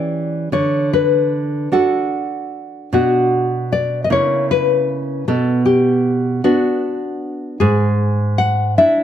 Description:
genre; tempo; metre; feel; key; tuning
romantic duo for nylon-string guitar and classical guitar; 51 BPM (dotted quarters); 6/8; rubato; unclear; A4 = 439 Hz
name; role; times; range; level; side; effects
nylon-string guitar; melody; 0.0-9.0 s; F#4 to F#5; -17 LUFS; left 4 dB; none
nylon-string guitar; accompaniment; 0.0-9.0 s; G#2 to G4; -18 LUFS; right 3 dB; none
room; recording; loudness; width
light reverb; close, detailed microphones; -15 LUFS; side -10 dB against mid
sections
0.0-9.0 A section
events
none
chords
0.0 C#dim/E; 0.5 D; 2.9 Bm; 4.1 A#dim/C#; 5.3 Bm; 7.6 E7/G#

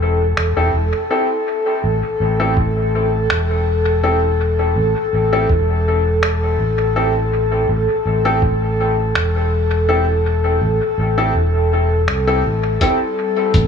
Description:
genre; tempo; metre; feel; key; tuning
ambient dub; 82 BPM; 4/4; swing 53% on 16ths; A minor; A4 = 437 Hz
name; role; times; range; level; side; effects
airy breathy pad; sustained chords; 0.0-13.7 s; G3 to A4; -19 LUFS; left 1 dB; chorus
fingered electric bass; bass; 0.0-13.7 s; E1 to C2; -18 LUFS; equal; none
lo-fi sampler-style drum kit; drums; 0.4-13.7 s; finger snaps, hi-hat; -27 LUFS; equal; studio ambience, dub echo
bright upright piano; stabs; 0.6-13.0 s; C4 to A4; -21 LUFS; left 2 dB; vintage 12-bit sampler grit, low-pass filter, dub echo
electronic kick drum; drums; 2.6-13.7 s; none; -18 LUFS; equal; studio ambience
room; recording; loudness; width
light reverb, digital ambience; small room ambience; -15 LUFS; side -7 dB against mid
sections
0.0-12.8 A section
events
kick drops out 11.3-12.8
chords
0.0 Am; 12.8 Am7

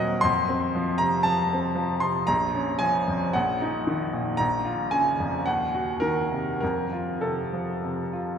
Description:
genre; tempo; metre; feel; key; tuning
classical, romantic character piece for solo piano; 96-119 BPM; 4/4; rubato; unclear; A4 = 443 Hz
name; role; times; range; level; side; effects
bright grand piano; solo; 0.0-8.4 s; Bb1 to C6; -23 LUFS; equal; none
room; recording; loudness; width
wet cathedral reverb, RT60 4.9 s; recorded in a church or concert hall; -23 LUFS; side -7 dB against mid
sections
0.0-8.4 A section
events
none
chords
0.2 F; 2.3 Bbm; 3.3 Eb5/Bb; 4.4 Bbm; 5.5 Cdim/Eb; 6.6 F

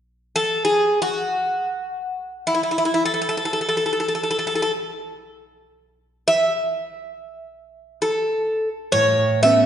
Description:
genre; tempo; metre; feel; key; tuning
greek folk; free time; none; none; A major; A4 = 440 Hz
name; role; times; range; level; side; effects
Greek bouzouki; melody; 0.4-9.7 s; E4 to E5; -19 LUFS; equal; none
nylon-string guitar; accompaniment; 8.9-9.7 s; A2 to C#4; -20 LUFS; right 2 dB; none
room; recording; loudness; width
wet scoring stage reverb, RT60 1.8 s; recorded in a church or concert hall, nothing above 11.0 kHz, faint mains hum; -19 LUFS; side -9 dB against mid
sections
0.0-8.9 A section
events
none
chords
0.0 N.C.; 8.9 Aadd9

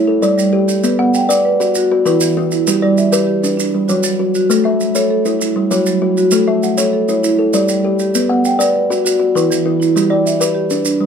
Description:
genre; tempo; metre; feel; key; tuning
southern african traditional, mbira-style interlocking cycle; 132 BPM (dotted quarters); 12/8; straight; unclear; A4 = 438 Hz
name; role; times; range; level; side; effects
marimba with soft mallets; arpeggios; 0.0-11.1 s; E3 to G5; -16 LUFS; right 4 dB; none
kalimba; arpeggios; 0.1-11.1 s; E3 to F#5; -15 LUFS; left 3 dB; none
maracas; percussion; 0.2-11.0 s; none; -23 LUFS; right 5 dB; none
room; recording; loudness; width
moderate small room ambience, RT60 0.5 s; none; -12 LUFS; side -7 dB against mid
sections
0.0-11.1 A section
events
none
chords
0.0 G5; 0.8 Bm; 1.8 E5; 2.7 G; 3.6 F#5; 4.5 A; 5.4 F#5; 6.3 A; 7.2 G5; 8.1 Bm; 9.1 E5; 10.0 G

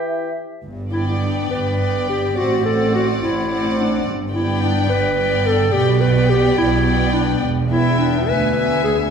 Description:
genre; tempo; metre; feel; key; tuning
quick classical-period movement for symphony orchestra; 70 BPM (dotted quarters); 6/8; rubato; G major; A4 = 443 Hz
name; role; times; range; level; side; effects
clear clarinet; second line; 0.0-9.0 s; D4 to B4; -20 LUFS; equal; none
rich chamber double bass section; bass; 0.6-9.0 s; E1 to D2; -22 LUFS; right 3 dB; none
warm chamber cello section; bass; 0.6-9.0 s; D2 to B2; -24 LUFS; right 1 dB; none
warm chamber violin section; melody; 0.9-9.1 s; F#5 to G#5; -27 LUFS; left 6 dB; none
rich chamber violin section; second line; 0.9-9.1 s; D5 to E5; -27 LUFS; left 3 dB; none
rich chamber viola section; accompaniment; 0.9-9.1 s; B3 to C4; -25 LUFS; right 1 dB; none
room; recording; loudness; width
wet recital hall reverb, RT60 1.2 s; recorded in a church or concert hall; -16 LUFS; side -6 dB against mid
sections
0.6-9.1 A section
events
none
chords
0.0 Em; 0.6 G; 2.4 D7/A; 4.1 G; 5.7 G/B; 7.4 Em; 8.3 E7/D

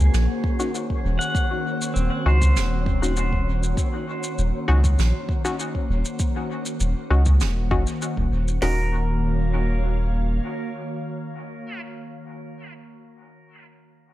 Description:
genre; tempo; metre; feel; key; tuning
ambient dub; 99 BPM; 4/4; straight; Eb dorian; A4 = 439 Hz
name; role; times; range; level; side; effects
soft additive organ-like pad; sustained chords; 0.0-11.8 s; Eb3 to Gb5; -30 LUFS; left 1 dB; ensemble chorus, built-in reverb
pedal steel guitar; arpeggios; 0.0-3.9, 8.6-11.8 s; C4 to Gb5; -32 LUFS; right 1 dB; dub echo
soft dub sub bass; bass; 0.0-10.4 s; Eb1 to Db2; -20 LUFS; equal; none
shaker and snare drum; drums; 0.0-8.6 s; none; -33 LUFS; right 2 dB; dub echo
wind-like tuned noise texture; texture; 0.0-8.6 s; Bb3 to Db4; -36 LUFS; left 3 dB; built-in reverb
deep house drum kit; drums; 0.4-8.8 s; hi-hat, kick drum, snare drum; -25 LUFS; equal; none
filtered dub chord stab; stabs; 0.6-12.2 s; Db4 to Gb4; -31 LUFS; left 3 dB; chorus, dub echo
room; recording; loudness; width
digital ambience; none; -20 LUFS; side -15 dB against mid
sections
0.0-8.6 A section; 8.6-11.0 B section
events
none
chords
0.0 Ebm7

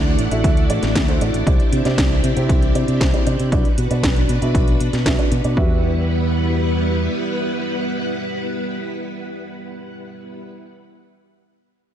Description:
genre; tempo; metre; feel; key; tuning
italo disco; 117 BPM; 4/4; straight; E minor; A4 = 439 Hz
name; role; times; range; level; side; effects
string machine, full ensemble; sustained chords; 0.0-10.4 s; G3 to F#5; -23 LUFS; equal; ensemble chorus
dark baby grand piano; stabs; 0.0-10.4 s; D4 to E5; -26 LUFS; right 4 dB; low-pass filter, digital delay
fingered electric bass with an envelope filter; bass; 0.0-7.1 s; A1 to C3; -20 LUFS; equal; tube saturation
house drum kit; drums; 0.2-5.5 s; hi-hat, snare drum; -24 LUFS; equal; overdrive
electronic kick drum; drums; 0.4-5.7 s; none; -19 LUFS; equal; overdrive
room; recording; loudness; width
light reverb; dark, warm production; -16 LUFS; side -10 dB against mid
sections
0.0-5.6 A section; 5.6-9.7 B section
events
filter sweep on grand piano 0.0-5.6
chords
0.0 Dadd9; 1.5 Cadd9; 3.5 Bm; 5.6 Emadd9

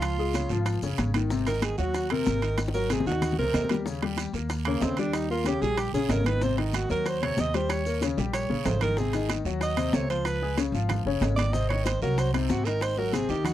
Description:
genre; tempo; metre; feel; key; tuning
Afro-Cuban jazz; 188 BPM; 4/4; straight; Ab mixolydian; A4 = 441 Hz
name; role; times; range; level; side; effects
clear alto saxophone; melody; 0.0-13.5 s; Bb3 to Eb5; -29 LUFS; right 4 dB; none
warm baby grand piano; accompaniment; 0.0-13.5 s; C3 to Ab5; -30 LUFS; left 6 dB; none
upright bass; bass; 0.0-13.5 s; Gb1 to Eb2; -29 LUFS; right 1 dB; none
bongos; percussion; 0.0-13.5 s; none; -33 LUFS; left 4 dB; none
congas; percussion; 0.0-13.5 s; none; -35 LUFS; equal; none
guiro; percussion; 0.0-13.5 s; none; -42 LUFS; right 18 dB; none
maracas; percussion; 0.0-13.5 s; none; -46 LUFS; left 4 dB; none
timbales; percussion; 0.0-13.5 s; none; -34 LUFS; right 8 dB; none
room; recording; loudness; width
little or no reverb; dry, close 1970s-style studio recording; -24 LUFS; side -12 dB against mid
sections
0.0-9.0 A section; 9.0-13.5 A section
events
alto saxophone solo 0.0-13.5; drum fill 2.6-3.9, 8.5-9.0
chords
0.0 Dbadd9; 1.3 Ab9; 3.9 Eb7; 6.4 Ab7; 7.7 Eb7; 9.0 Ab7; 10.3 Db9; 11.5 Ab7

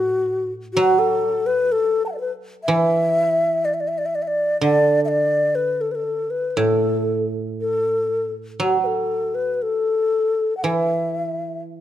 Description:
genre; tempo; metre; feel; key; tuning
chinese traditional, Chinese chamber ensemble; 59-64 BPM; 4/4; rubato; unclear; A4 = 443 Hz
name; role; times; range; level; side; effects
mellow xiao; melody; 0.0-11.6 s; F#4 to A5; -20 LUFS; left 2 dB; none
guzheng; accompaniment; 0.0-11.8 s; A2 to F#3; -23 LUFS; right 4 dB; none
room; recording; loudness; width
moderate recital hall reverb, RT60 1.6 s; close, detailed microphones; -18 LUFS; side -11 dB against mid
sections
0.0-11.8 A section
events
none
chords
none

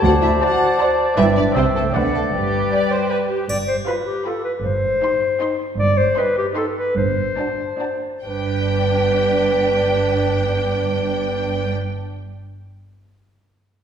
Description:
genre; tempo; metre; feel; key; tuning
cinematic, playful, whimsical film cue; 133-159 BPM; 3/4; straight; G major; A4 = 439 Hz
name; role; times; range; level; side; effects
clear oboe; second line; 0.0-3.3 s; D5 to E5; -24 LUFS; right 2 dB; none
mellow hollow silver concert flute; second line; 0.0-3.3 s; F#5 to A5; -25 LUFS; left 4 dB; none
warm clarinet; second line; 0.0-11.7 s; G4 to D5; -21 LUFS; left 1 dB; none
warm studio violin section; second line; 0.0-11.7 s; F#4 to F#5; -31 LUFS; equal; none
mellow French horn section; sustained chords; 0.0-3.3 s; G3 to F#4; -22 LUFS; left 3 dB; none
warm studio cello section; bass; 0.0-11.7 s; D2 to D3; -24 LUFS; right 4 dB; none
warm studio double bass section; bass; 0.0-11.7 s; G1 to D2; -26 LUFS; right 3 dB; none
warm studio violin section; melody; 0.4-11.7 s; F#5 to C6; -30 LUFS; left 3 dB; none
warm studio viola section; accompaniment; 0.4-11.7 s; D4 to E5; -26 LUFS; right 2 dB; none
triangle; percussion; 3.5-4.2 s; none; -34 LUFS; right 1 dB; none
room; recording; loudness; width
wet scoring stage reverb, RT60 1.5 s; heard from further back in the room; -17 LUFS; side -8 dB against mid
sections
0.0-3.5 A section; 3.5-8.2 B section; 8.2-10.9 C section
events
slowing down 5.2-8.2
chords
0.0 D7; 1.2 G; 1.6 C; 1.9 D7; 2.3 G; 3.5 G7; 4.6 Cm/G; 7.0 D7/G

